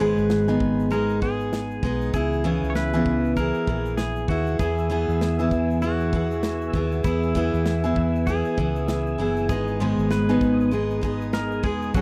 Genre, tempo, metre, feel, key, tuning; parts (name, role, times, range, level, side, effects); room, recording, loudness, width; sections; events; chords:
acoustic pop; 98 BPM; 4/4; swing 60% on 16ths; A4 = 440 Hz
pedal steel guitar; second line; 0.0-12.0 s; E4 to C#5; -35 LUFS; equal
picked steel-string acoustic guitar; accompaniment; 0.0-12.0 s; G#2 to G#4; -25 LUFS; equal
hollow-body short-scale fingered electric bass; bass; 0.0-12.0 s; E1 to E2; -30 LUFS; equal
modern studio drum kit; drums; 0.2-12.0 s; kick drum, shaker, snare drum; -29 LUFS; equal
tonewheel organ; sustained chords; 4.6-12.0 s; B3 to E6; -39 LUFS; equal; chorus vibrato, slow rotary speaker
small room ambience; dry, close 1970s-style studio recording; -23 LUFS; mono
0.0-12.0 A section
0.0 G#m; 2.1 C#m7; 4.6 E; 9.5 G#m